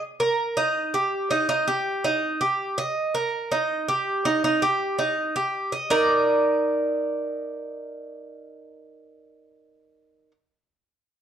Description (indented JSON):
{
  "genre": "latin",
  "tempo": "163 BPM",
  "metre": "4/4",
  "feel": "straight",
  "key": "Eb major",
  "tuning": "A4 = 440 Hz",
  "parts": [
    { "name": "Cuban tres", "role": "arpeggios", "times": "0.2-10.3 s", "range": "Eb4 to Eb5", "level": "-22 LUFS", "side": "right 1 dB", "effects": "none" }
  ],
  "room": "moderate large studio reverb, RT60 0.8 s",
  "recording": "dark, warm production",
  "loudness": "-22 LUFS",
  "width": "side -9 dB against mid",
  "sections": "0.0-5.9 A section; 5.9-8.9 B section",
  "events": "none",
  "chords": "0.0 Eb; 5.9 Eb5"
}